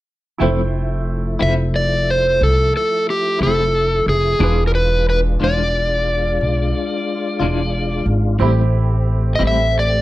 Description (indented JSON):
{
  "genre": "blues",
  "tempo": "60 BPM (dotted quarters)",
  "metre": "12/8",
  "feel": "straight",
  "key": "unclear",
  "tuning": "A4 = 440 Hz",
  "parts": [
    { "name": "bright upright piano", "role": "accompaniment", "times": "0.4-10.0 s", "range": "A3 to B5", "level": "-26 LUFS", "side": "right 7 dB", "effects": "none" },
    { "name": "clean electric guitar", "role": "accompaniment", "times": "0.4-9.6 s", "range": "A2 to F4", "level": "-22 LUFS", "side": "left 3 dB", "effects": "tremolo" },
    { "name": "tonewheel organ", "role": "sustained chords", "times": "0.4-10.0 s", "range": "F3 to G4", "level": "-26 LUFS", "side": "left 2 dB", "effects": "overdrive, chorus vibrato, slow rotary speaker" },
    { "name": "upright bass", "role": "bass", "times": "0.4-10.0 s", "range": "E1 to C2", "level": "-18 LUFS", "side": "equal", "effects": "none" },
    { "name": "overdriven slide guitar", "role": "melody", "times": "1.4-10.0 s", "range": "G4 to E5", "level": "-18 LUFS", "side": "equal", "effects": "none" }
  ],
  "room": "moderate studio reverb, RT60 0.7 s",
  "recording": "dark, warm production",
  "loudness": "-15 LUFS",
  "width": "side -16 dB against mid",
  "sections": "0.4-10.0 A section",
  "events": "none",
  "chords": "0.4 Fmaj7; 4.4 E7b9; 8.4 Am7",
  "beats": "| 0.40 1.41 2.41 3.41 | 4.41 5.41 6.41 7.41 | 8.41 9.40"
}